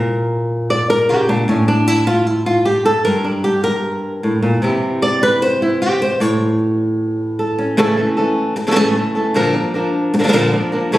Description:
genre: flamenco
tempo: 152 BPM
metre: 4/4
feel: straight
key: A phrygian dominant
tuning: A4 = 440 Hz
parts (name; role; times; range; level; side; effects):
- flamenco guitar; solo; 0.0-11.0 s; G2 to D5; -14 LUFS; equal; none
room: light reverb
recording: recorded on a phone in the room, studio reverb, compression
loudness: -14 LUFS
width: side -15 dB against mid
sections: 0.0-7.8 A section; 7.8-11.0 B section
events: nylon-string guitar solo 0.0-7.8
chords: 0.0 Bb6; 1.5 N.C.; 3.1 Gm; 4.6 C; 6.2 A; 9.3 Bb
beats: 0.30 0.69 1.09 | 1.48 1.87 2.27 2.66 | 3.05 3.44 3.84 4.23 | 4.62 5.02 5.41 5.80 | 6.20 6.59 6.99 7.38 | 7.77 8.17 8.56 8.95 | 9.35 9.74 10.13 10.53 | 10.92

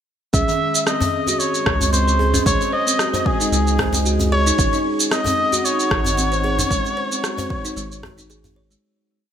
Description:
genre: organic downtempo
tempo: 113 BPM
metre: 4/4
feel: swing 55% on 16ths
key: unclear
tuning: A4 = 441 Hz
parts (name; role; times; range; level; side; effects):
- trumpet with cup mute; melody; 0.3-8.3 s; G#4 to E5; -21 LUFS; equal; digital delay
- warm analog pad; sustained chords; 0.6-8.8 s; G#3 to F#5; -28 LUFS; right 2 dB; chorus, sidechain pumping
- buzzing kalimba; arpeggios; 0.3-8.8 s; D#3 to C#5; -25 LUFS; left 1 dB; low-pass filter, digital delay
- round analog bass; bass; 0.3-8.8 s; G#1 to C#2; -21 LUFS; equal; sidechain pumping
- electronic kick drum; drums; 0.3-8.2 s; none; -22 LUFS; equal; none
- electronic shaker and rim click; drums; 0.3-8.8 s; none; -23 LUFS; right 1 dB; none
- quartz singing bowl; texture; 0.3-8.8 s; C#4 to G#4; -32 LUFS; right 3 dB; none
- djembe; percussion; 0.5-8.8 s; none; -28 LUFS; left 2 dB; none
room: moderate lush hall reverb, RT60 2.0 s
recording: bright 1980s-style digital production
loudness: -16 LUFS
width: side -9 dB against mid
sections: 0.3-8.8 groove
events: fade-out 6.0-8.8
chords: 0.3 C#sus2; 4.6 G#7sus4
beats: | 0.34 0.87 1.40 1.93 | 2.46 2.99 3.52 4.05 | 4.58 5.12 5.65 6.18 | 6.71 7.24 7.77 8.30

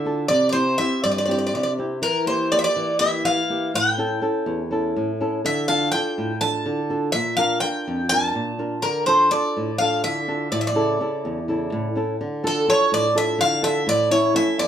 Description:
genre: greek folk, Greek bouzouki band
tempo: 248 BPM (eighths)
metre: 7/8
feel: straight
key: D minor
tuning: A4 = 441 Hz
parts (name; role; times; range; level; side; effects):
- Greek bouzouki; melody; 0.0-14.7 s; A4 to A5; -21 LUFS; equal; none
- flamenco guitar; accompaniment; 0.0-14.7 s; E2 to Bb4; -23 LUFS; equal; none
room: moderate studio ambience, RT60 0.5 s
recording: band playing live in one room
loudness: -19 LUFS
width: side -9 dB against mid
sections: 0.0-12.2 A section; 12.2-14.7 B section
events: speeding up 0.0-14.7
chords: 0.3 C; 2.0 Edim; 3.7 A; 5.4 Dm; 7.1 Bb; 8.8 Dm; 10.5 A; 12.2 Dm; 13.9 A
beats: 0.06 | 0.31 0.55 0.80 1.04 1.29 1.53 1.78 | 2.02 2.27 2.52 2.76 3.00 3.25 3.49 | 3.74 3.98 4.22 4.47 4.71 4.96 5.20 | 5.44 5.68 5.93 6.17 6.41 6.66 6.90 | 7.14 7.38 7.62 7.87 8.11 8.35 8.59 | 8.83 9.07 9.32 9.56 9.80 10.04 10.28 | 10.52 10.76 11.00 11.24 11.48 11.72 11.96 | 12.20 12.44 12.68 12.92 13.16 13.40 13.63 | 13.87 14.11 14.35 14.59

